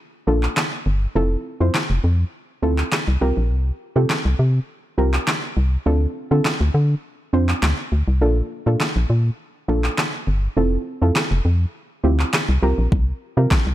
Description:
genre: dance-pop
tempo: 102 BPM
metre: 4/4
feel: straight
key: unclear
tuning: A4 = 437 Hz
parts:
  - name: soft round pluck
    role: accompaniment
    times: 0.0-13.7 s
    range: Bb3 to C5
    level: -23 LUFS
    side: right 1 dB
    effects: chorus, sidechain pumping
  - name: organ-like FM bass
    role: bass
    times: 0.3-13.7 s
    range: F1 to D3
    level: -18 LUFS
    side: equal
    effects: sidechain pumping
  - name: pop drum kit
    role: drums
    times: 0.4-13.7 s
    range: handclaps, kick drum, snare drum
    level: -22 LUFS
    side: equal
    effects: overdrive
room: little or no reverb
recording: none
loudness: -18 LUFS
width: side -14 dB against mid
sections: 0.0-13.7 A section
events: none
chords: 0.0 Bbmaj7; 1.2 Fmaj7; 3.2 C7sus4; 5.9 Dm7; 8.2 Bbmaj7; 10.6 Fmaj7; 12.6 C7sus4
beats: 0.57 | 1.16 1.74 2.33 2.92 | 3.51 4.10 4.68 5.27 | 5.86 6.45 7.04 7.63 | 8.21 8.80 9.39 9.98 | 10.57 11.16 11.74 12.33 | 12.92 13.51

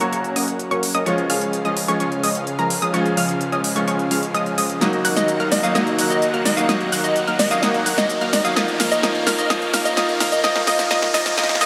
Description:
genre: EDM, festival progressive house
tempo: 128 BPM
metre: 4/4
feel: straight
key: unclear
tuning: A4 = 440 Hz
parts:
  - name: plucky unison lead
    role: melody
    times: 0.0-0.5, 5.2-11.7 s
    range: Eb5 to Bb5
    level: -25 LUFS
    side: equal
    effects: digital delay
  - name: bright baby grand piano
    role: accompaniment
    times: 0.0-11.7 s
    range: F3 to Gb4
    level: -28 LUFS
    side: equal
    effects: vintage 12-bit sampler grit, digital delay
  - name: lush unison pad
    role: sustained chords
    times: 0.0-11.7 s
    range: Db3 to Gb5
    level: -31 LUFS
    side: equal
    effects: chorus
  - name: unison pluck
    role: arpeggios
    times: 0.0-11.7 s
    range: Bb5 to Gb6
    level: -28 LUFS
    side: equal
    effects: digital delay
  - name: supersaw stab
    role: riff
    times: 0.0-11.7 s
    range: F3 to Gb5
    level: -26 LUFS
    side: equal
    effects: low-pass filter, digital delay
  - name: detuned saw bass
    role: bass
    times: 0.0-11.7 s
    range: Gb1 to Eb2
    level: -36 LUFS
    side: equal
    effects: none
  - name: big-room dance drum kit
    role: drums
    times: 0.0-11.7 s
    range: cabasa, hi-hat, snare drum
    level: -26 LUFS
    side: equal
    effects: none
  - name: riser and reverse cymbal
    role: sound effects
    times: 2.5-11.7 s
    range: none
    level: -32 LUFS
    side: equal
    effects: none
room: wet lush hall reverb, RT60 2.0 s, digital ambience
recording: high-pass filter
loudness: -19 LUFS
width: mono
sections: 0.0-11.7 A section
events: build-up 0.0-11.7; filter sweep on supersaw synth 0.0-11.7; riser 2.5-11.7; drum fill 4.8-11.7; reverse cymbal 11.4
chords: 0.0 Gb; 1.1 Db; 4.8 Ebm; 8.6 Bbm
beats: 0.13 0.59 | 1.06 1.53 2.00 2.47 | 2.94 3.41 3.88 4.34 | 4.81 5.28 5.75 6.22 | 6.69 7.16 7.63 8.10 | 8.56 9.03 9.50 9.97 | 10.44 10.91 11.38

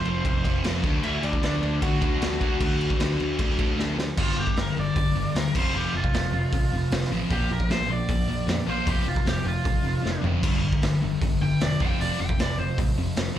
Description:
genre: punk rock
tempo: 153 BPM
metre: 4/4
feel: straight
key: unclear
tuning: A4 = 442 Hz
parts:
  - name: crunchy overdriven guitar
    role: melody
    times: 0.0-12.8 s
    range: D4 to C6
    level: -30 LUFS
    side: equal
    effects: slapback echo
  - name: sludgy distorted guitar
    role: riff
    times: 0.0-13.4 s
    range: F2 to D4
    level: -30 LUFS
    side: left 8 dB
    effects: overdrive, slapback echo
  - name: sludgy distorted guitar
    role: riff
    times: 0.0-13.4 s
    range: F2 to D4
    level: -30 LUFS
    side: right 7 dB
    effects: overdrive
  - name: modern bright picked electric bass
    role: bass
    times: 0.1-13.4 s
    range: E1 to F2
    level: -30 LUFS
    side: equal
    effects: none
  - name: raw garage drum kit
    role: drums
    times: 0.1-13.3 s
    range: crash cymbal, hi-hat, kick drum, snare drum, toms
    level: -26 LUFS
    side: equal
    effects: none
room: little or no reverb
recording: live gig heard through the venue's PA, club reverb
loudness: -22 LUFS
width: side -11 dB against mid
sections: 0.0-4.2 A section; 4.2-13.4 B section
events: drum fill 3.8-4.2, 10.0-10.4; overdriven electric guitar solo 4.2-13.4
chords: 0.0 F5; 0.8 D; 4.2 G5; 5.5 F; 7.3 Bb; 8.9 F5; 10.4 G5; 11.8 F5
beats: 0.25 0.64 | 1.03 1.43 1.82 2.21 | 2.60 3.00 3.39 3.78 | 4.17 4.56 4.96 5.35 | 5.74 6.13 6.52 6.91 | 7.30 7.70 8.09 8.48 | 8.87 9.26 9.65 10.04 | 10.43 10.82 11.21 11.60 | 11.99 12.38 12.77 13.16

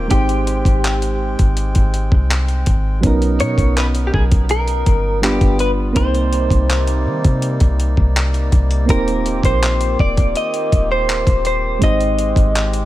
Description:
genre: contemporary R&B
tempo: 82 BPM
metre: 4/4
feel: straight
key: unclear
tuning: A4 = 440 Hz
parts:
  - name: soft electric-piano-like synth keys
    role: accompaniment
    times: 0.0-12.9 s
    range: F#3 to C5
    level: -23 LUFS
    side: right 4 dB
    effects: chorus
  - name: hand-pumped harmonium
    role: sustained chords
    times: 0.0-12.9 s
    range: C3 to G5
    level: -27 LUFS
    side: left 1 dB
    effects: none
  - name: soft 808-style bass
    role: bass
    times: 0.0-12.9 s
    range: Eb1 to Eb3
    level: -18 LUFS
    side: equal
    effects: none
  - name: direct-recorded clean electric guitar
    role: melody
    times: 0.1-12.9 s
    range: G4 to Eb5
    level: -21 LUFS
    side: left 1 dB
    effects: wide subtle chorus, digital delay
  - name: dusty soul sampler-style drum kit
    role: drums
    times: 0.1-12.9 s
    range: handclaps, hi-hat, kick drum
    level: -16 LUFS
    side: equal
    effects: none
room: little or no reverb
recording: none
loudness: -14 LUFS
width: side -15 dB against mid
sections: 0.0-12.9 A section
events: none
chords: 0.1 Abmaj7; 3.0 Bmaj9; 5.2 G7; 6.0 Cm7; 8.9 Eb6; 11.8 Abmaj7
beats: | 0.11 0.84 1.57 2.30 | 3.03 3.77 4.50 5.23 | 5.96 6.69 7.42 8.16 | 8.89 9.62 10.35 11.08 | 11.81 12.55

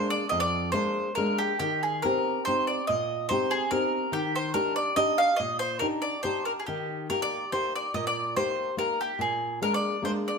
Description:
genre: italian folk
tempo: 143 BPM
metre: 3/4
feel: rubato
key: Eb major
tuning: A4 = 440 Hz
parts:
  - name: bowl-back mandolin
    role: melody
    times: 0.0-10.4 s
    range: G4 to F5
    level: -27 LUFS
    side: equal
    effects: none
  - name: flamenco guitar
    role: accompaniment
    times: 0.0-10.4 s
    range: F2 to G4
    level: -30 LUFS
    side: left 1 dB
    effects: none
room: wet stone room reverb, RT60 1.1 s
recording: band playing live in one room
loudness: -25 LUFS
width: side -5 dB against mid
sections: 0.0-6.7 A section; 6.7-10.4 A section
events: none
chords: 0.0 Bb7; 1.6 Eb6; 4.1 Ebmaj7; 6.7 Eb; 9.2 Bb7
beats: | 0.32 0.74 1.17 | 1.60 2.03 2.46 | 2.88 3.30 3.72 | 4.14 4.55 4.97 | 5.39 5.81 6.23 | 6.67 7.09 7.51 | 7.94 8.36 8.77 | 9.19 9.60 10.02

